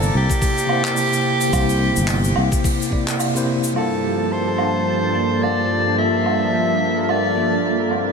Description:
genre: sunset chillout.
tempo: 108 BPM.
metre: 4/4.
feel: swing 56% on 16ths.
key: unclear.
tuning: A4 = 440 Hz.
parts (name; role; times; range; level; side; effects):
clear soprano saxophone; melody; 0.0-7.9 s; G4 to E5; -22 LUFS; equal; tape echo.
bell-like tine electric piano; accompaniment; 0.0-7.9 s; C3 to D5; -22 LUFS; equal; fast stereo tremolo, auto-pan, tape echo.
sustaining fretless electric bass; bass; 0.0-2.5 s; G1 to C2; -19 LUFS; equal; none.
jazz brush drum kit; drums; 0.0-8.0 s; handclaps, hi-hat, shaker, woodblock; -26 LUFS; right 1 dB; low-pass filter on hats, low-pass filter on perc, low-pass filter on snare, low-pass filter on room.
electronic kick drum; drums; 0.3-3.0 s; none; -21 LUFS; equal; none.
lush unison pad; sustained chords; 3.8-8.1 s; G2 to A5; -22 LUFS; equal; chorus.
Celtic harp; arpeggios; 3.8-8.1 s; C4 to A4; -28 LUFS; right 2 dB; low-pass filter, tape echo.
room: wet huge ambient reverb, RT60 7.1 s.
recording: dreamy mix soaked in reverb.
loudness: -16 LUFS.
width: side -5 dB against mid.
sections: 0.0-3.8 A section; 3.8-8.1 B section.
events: none.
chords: 0.0 C7; 3.8 Gm9.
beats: 0.42 0.98 | 1.53 2.09 2.64 3.20 | 3.75 4.31 4.87 5.42 | 5.98 6.53 7.09 7.64.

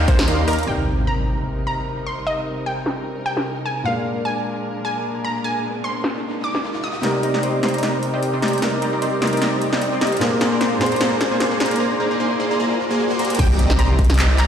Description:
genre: future bass.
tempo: 151 BPM.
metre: 4/4.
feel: swing 55% on 16ths, half-time.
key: C minor.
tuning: A4 = 442 Hz.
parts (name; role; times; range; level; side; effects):
dark studio string section; sustained chords; 0.0-11.8 s; Bb2 to Bb4; -30 LUFS; left 1 dB; sidechain pumping.
supersaw stab; riff; 0.0-0.7, 7.0-14.4 s; Bb3 to C6; -21 LUFS; equal; sidechain pumping, low-pass filter, dub echo.
wide detuned saw bass; bass; 0.0-0.7, 13.4-14.5 s; C2 to Eb2; -18 LUFS; equal; chorus, sidechain pumping.
wide unison pluck; melody; 0.1-6.9, 13.4-14.5 s; Bb4 to Eb6; -26 LUFS; right 1 dB; cassette tape, sidechain pumping, dub echo.
big-room dance drum kit; drums; 0.1-3.4, 6.0-14.5 s; crash cymbal, handclaps, hi-hat, snare drum; -24 LUFS; equal; low-pass filter on hats, small room ambience, low-pass filter on snare, low-pass filter on cymbals.
electronic kick drum; drums; 0.1-0.2, 13.4-14.1 s; none; -16 LUFS; equal; small room ambience.
warm baby grand piano; accompaniment; 0.7-13.4 s; Bb2 to C5; -26 LUFS; left 1 dB; sidechain pumping, dub echo.
impact and riser; sound effects; 0.7-14.5 s; none; -27 LUFS; equal; none.
room: wet lush hall reverb, RT60 1.9 s.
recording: played on a big sound system in a bare room, stone room reverb.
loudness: -18 LUFS.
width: side -8 dB against mid.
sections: 0.7-7.0 A section; 7.0-13.4 B section; 13.4-14.5 C section.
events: break 0.3-0.7; impact 0.7-2.3, 13.4-14.5; riser 5.0-7.0; build-up 7.0-13.4; drum fill 7.0-11.8, 13.2; filter sweep on supersaw synth 7.0-13.4; drop 13.4-14.5.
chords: 0.0 Ebmaj7; 0.7 Cm7; 3.9 Bb7; 7.0 Cm7; 10.2 Bb7; 13.4 Cm7.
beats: 0.28 | 0.68 1.07 1.47 1.87 | 2.27 2.66 3.06 3.46 | 3.85 4.25 4.65 5.05 | 5.44 5.84 6.24 6.64 | 7.03 7.43 7.83 8.22 | 8.62 9.02 9.42 9.81 | 10.21 10.61 11.01 11.40 | 11.80 12.20 12.60 12.99 | 13.39 13.79 14.19.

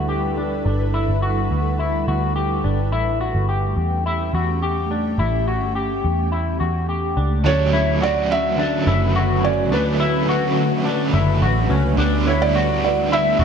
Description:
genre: dream pop.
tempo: 106 BPM.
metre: 4/4.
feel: straight.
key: unclear.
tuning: A4 = 440 Hz.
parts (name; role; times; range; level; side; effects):
ethereal airy pad; sustained chords; 0.0-13.4 s; D3 to B4; -24 LUFS; equal; ensemble chorus, built-in reverb, tremolo.
electric guitar with an envelope filter; arpeggios; 0.0-13.4 s; C#4 to G4; -24 LUFS; left 5 dB; analog chorus, tape echo.
vintage muted picked electric bass; bass; 0.0-13.4 s; E1 to E2; -22 LUFS; equal; none.
overdriven semi-hollow guitar; accompaniment; 7.4-13.4 s; D3 to D4; -24 LUFS; right 4 dB; tremolo, lush chorus.
felt-muted upright piano; melody; 7.5-13.4 s; B4 to E5; -22 LUFS; right 4 dB; tape echo.
room: moderate lush hall reverb, RT60 2.1 s.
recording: dark, warm production.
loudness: -17 LUFS.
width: side -7 dB against mid.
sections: 0.0-7.5 A section; 7.5-13.4 B section.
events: none.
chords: 0.0 G6; 2.9 A7; 7.5 Bm9; 12.0 A9sus4/D.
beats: 0.10 | 0.66 1.23 1.80 2.36 | 2.93 3.49 4.06 4.63 | 5.19 5.76 6.32 6.89 | 7.46 8.02 8.59 9.15 | 9.72 10.29 10.85 11.42 | 11.98 12.55 13.12.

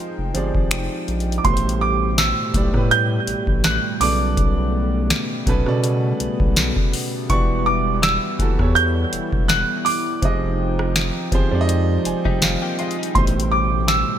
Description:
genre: contemporary R&B.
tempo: 82 BPM.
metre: 4/4.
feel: swing 54% on 16ths.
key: unclear.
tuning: A4 = 441 Hz.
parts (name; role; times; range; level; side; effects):
clear grand piano; melody; 0.0-14.2 s; C5 to G6; -22 LUFS; right 2 dB; wide subtle chorus, digital delay.
warm grand piano; accompaniment; 0.0-14.2 s; A2 to Ab5; -25 LUFS; right 3 dB; none.
warm analog pad; sustained chords; 0.0-14.2 s; B2 to G5; -27 LUFS; left 1 dB; chorus, sidechain pumping.
saturated sub bass; bass; 0.2-14.0 s; E1 to B2; -22 LUFS; equal; none.
booming analog drum machine; drums; 0.3-14.1 s; finger snaps, hi-hat, kick drum, rim click, snare drum; -21 LUFS; equal; gated reverb.
direct-recorded clean electric guitar; arpeggios; 12.3-13.3 s; G3 to G4; -28 LUFS; left 8 dB; analog chorus.
room: light reverb.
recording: bright 1980s-style digital production.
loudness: -17 LUFS.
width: side -10 dB against mid.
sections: 0.0-1.4 A section; 1.4-14.2 B section.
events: grand piano fill 11.7-13.2.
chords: 0.0 Fm9; 1.4 Am9; 4.0 Bm9; 7.3 Em9; 10.2 Fm9; 13.2 Am9.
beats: 0.71 | 1.45 2.18 2.91 3.64 | 4.37 5.10 5.84 6.57 | 7.30 8.03 8.76 9.49 | 10.23 10.96 11.69 12.42 | 13.15 13.88.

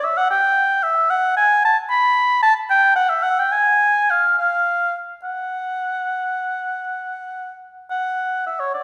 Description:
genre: classical, baroque-style fantasia for unaccompanied oboe.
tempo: 64-77 BPM (dotted quarters).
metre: 12/8.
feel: rubato.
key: F# minor.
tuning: A4 = 439 Hz.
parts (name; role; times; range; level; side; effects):
warm oboe; solo; 0.0-8.8 s; C#5 to B5; -19 LUFS; equal; none.
room: wet recital hall reverb, RT60 1.5 s.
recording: recorded in a church or concert hall.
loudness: -18 LUFS.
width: mono.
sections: 0.0-7.9 A section.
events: none.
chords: none.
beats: 0.29 | 1.09 1.90 2.68 3.51 | 4.37 5.24 6.10 6.98 | 7.89 8.74.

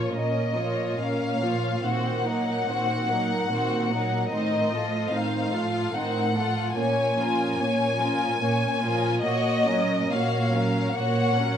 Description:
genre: classical, slow romantic movement for string orchestra.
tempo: 73 BPM.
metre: 3/4.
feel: uneven beats, rubato.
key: Bb minor.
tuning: A4 = 441 Hz.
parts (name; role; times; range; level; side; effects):
rich chamber violin section; melody; 0.0-11.6 s; Eb5 to Ab5; -27 LUFS; left 3 dB; none.
rich chamber violin section; second line; 0.0-11.6 s; Db4 to Db5; -29 LUFS; left 2 dB; none.
rich studio viola section; accompaniment; 0.0-11.6 s; Eb3 to Db4; -30 LUFS; right 3 dB; none.
dark chamber cello section; bass; 0.0-11.6 s; A2 to Bb2; -28 LUFS; right 2 dB; none.
room: moderate recital hall reverb, RT60 1.6 s.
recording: none.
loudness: -22 LUFS.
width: side -8 dB against mid.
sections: 0.0-11.6 A section.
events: none.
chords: 0.0 Bbm; 1.8 Cm7b5/Bb; 4.3 F7/A; 6.8 Bbm; 9.2 Gb/Bb.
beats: 0.13 0.98 | 1.84 2.68 3.50 | 4.31 5.12 5.93 | 6.77 7.60 8.39 | 9.23 10.09 10.94.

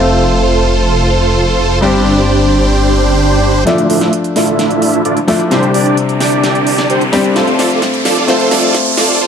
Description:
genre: EDM, festival progressive house.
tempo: 130 BPM.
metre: 4/4.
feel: straight.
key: unclear.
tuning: A4 = 439 Hz.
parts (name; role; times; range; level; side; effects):
felt-muted upright piano; accompaniment; 0.0-9.2 s; G2 to E5; -14 LUFS; left 3 dB; ping-pong delay.
dense compressed supersaw; riff; 0.0-9.3 s; A3 to E5; -13 LUFS; right 2 dB; low-pass filter, ping-pong delay.
detuned saw bass; bass; 0.0-9.2 s; F1 to D2; -17 LUFS; equal; high-pass filter.
swell and riser; sound effects; 2.9-9.2 s; none; -20 LUFS; right 2 dB; none.
big-room dance drum kit; drums; 3.7-9.2 s; hi-hat, snare drum; -20 LUFS; right 2 dB; high-pass filter on snare, high-pass filter on hats.
room: light reverb.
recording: dark, warm production, high-pass filter, low-pass filter.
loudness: -9 LUFS.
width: side -7 dB against mid.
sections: 0.0-3.7 A section; 3.7-9.3 B section.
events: swell 2.9-3.7; build-up 3.7-9.3; drum fill 3.7-9.2; filter sweep on supersaw synth 3.7-9.3; filter sweep 3.7-9.3; riser 5.2-9.2.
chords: 0.0 F; 1.8 Gsus4; 3.7 Dmadd9; 5.5 Csus2; 7.4 F6.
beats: 0.44 0.90 1.36 | 1.82 2.28 2.74 3.21 | 3.67 4.13 4.59 5.05 | 5.51 5.97 6.44 6.90 | 7.36 7.82 8.28 8.74 | 9.21.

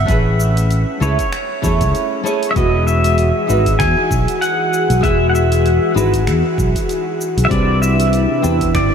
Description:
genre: sunset chillout.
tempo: 97 BPM.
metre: 4/4.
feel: swing 56% on 16ths.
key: E major.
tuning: A4 = 439 Hz.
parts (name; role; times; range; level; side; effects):
pedal steel guitar; melody; 0.0-8.9 s; C#5 to G#5; -20 LUFS; equal; lush chorus, diffuse ambient delay.
mellow fretless electric bass; bass; 0.0-8.9 s; E1 to E2; -16 LUFS; equal; lush chorus.
nylon-string guitar; accompaniment; 0.1-8.7 s; G#3 to C#5; -21 LUFS; right 1 dB; auto-pan, analog delay.
electronic kick drum; drums; 0.1-8.9 s; none; -21 LUFS; equal; small room reverb.
smooth R&B drum kit; drums; 0.1-8.9 s; finger snaps, hi-hat, shaker; -30 LUFS; right 1 dB; small room reverb.
airy breathy pad; sustained chords; 2.8-8.9 s; C3 to F#5; -19 LUFS; left 2 dB; chorus.
room: moderate huge ambient reverb, RT60 7.6 s.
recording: dreamy mix soaked in reverb.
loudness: -13 LUFS.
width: side -7 dB against mid.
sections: 0.0-8.9 A section.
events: none.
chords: 0.1 Amaj9; 2.6 Eadd9; 7.5 Cmaj9.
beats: | 0.08 0.70 1.32 1.94 | 2.56 3.18 3.79 4.41 | 5.03 5.65 6.27 6.89 | 7.51 8.12 8.74.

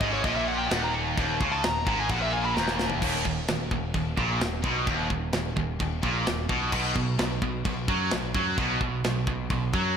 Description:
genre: heavy metal.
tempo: 130 BPM.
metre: 4/4.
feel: straight.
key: Eb minor.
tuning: A4 = 440 Hz.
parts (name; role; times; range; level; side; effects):
high-gain lead guitar; melody; 0.0-2.7 s; Db5 to Cb6; -30 LUFS; left 1 dB; distortion, slapback echo, tape echo.
distorted electric guitar; riff; 0.0-10.0 s; Eb2 to F#3; -33 LUFS; left 1 dB; overdrive.
high-gain distorted guitar; riff; 0.0-10.0 s; Eb2 to F#3; -33 LUFS; left 10 dB; distortion.
scooped high-gain guitar; riff; 0.0-10.0 s; Eb2 to F#3; -30 LUFS; right 9 dB; distortion.
growling picked electric bass; bass; 0.0-10.0 s; Eb1 to F#2; -32 LUFS; equal; overdrive.
tight metal drum kit; drums; 0.0-9.8 s; china cymbal, crash cymbal, kick drum, snare drum, toms; -30 LUFS; equal; none.
room: moderate lush hall reverb, RT60 1.7 s.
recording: big arena sound.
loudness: -24 LUFS.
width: side -7 dB against mid.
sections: 0.0-3.0 A section; 3.0-10.0 B section.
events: lead electric guitar solo 0.0-3.0; drum fill 2.6-3.0.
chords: 0.0 Eb5; 6.7 B5.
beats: 0.24 0.71 | 1.17 1.64 2.10 2.56 | 3.03 3.49 3.95 4.42 | 4.88 5.34 5.81 6.27 | 6.73 7.20 7.66 8.12 | 8.59 9.05 9.51.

